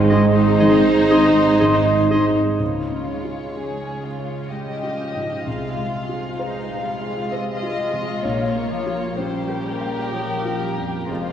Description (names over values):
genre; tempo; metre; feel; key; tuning
cinematic; 64 BPM; 3/4; uneven beats, rubato; unclear; A4 = 440 Hz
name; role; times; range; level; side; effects
warm studio violin section; melody; 0.0-11.3 s; Bb4 to F5; -28 LUFS; left 3 dB; none
dark symphonic violin section; second line; 0.0-11.3 s; Eb4 to Ab4; -27 LUFS; left 1 dB; none
dark symphonic viola section; accompaniment; 0.0-11.3 s; F3 to Bb3; -27 LUFS; right 2 dB; none
felt-muted upright piano; accompaniment; 0.0-11.3 s; Ab1 to F5; -24 LUFS; equal; none
mellow French horn section; sustained chords; 0.0-2.3 s; C4 to Eb4; -24 LUFS; equal; none
concert harp; arpeggios; 0.0-11.3 s; F2 to C6; -26 LUFS; equal; none
dark symphonic double bass section; bass; 0.0-11.3 s; F1 to Db2; -25 LUFS; right 6 dB; none
warm symphonic cello section; bass; 0.0-11.3 s; F2 to Db3; -31 LUFS; right 5 dB; none
bright oboe; second line; 0.1-2.3 s; Eb5; -28 LUFS; right 2 dB; none
mellow small flute group; second line; 0.1-2.2 s; C6; -28 LUFS; left 3 dB; none
warm clarinet; second line; 0.1-2.3 s; Ab4; -28 LUFS; right 1 dB; none
room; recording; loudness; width
wet church reverb, RT60 2.5 s; worn, warbling old tape, cassette tape, warbly pitch drift; -18 LUFS; side -9 dB against mid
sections
0.0-2.6 A section; 2.6-11.3 B section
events
none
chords
0.0 Ab; 2.6 Db; 5.5 Fm/C; 8.2 Bbm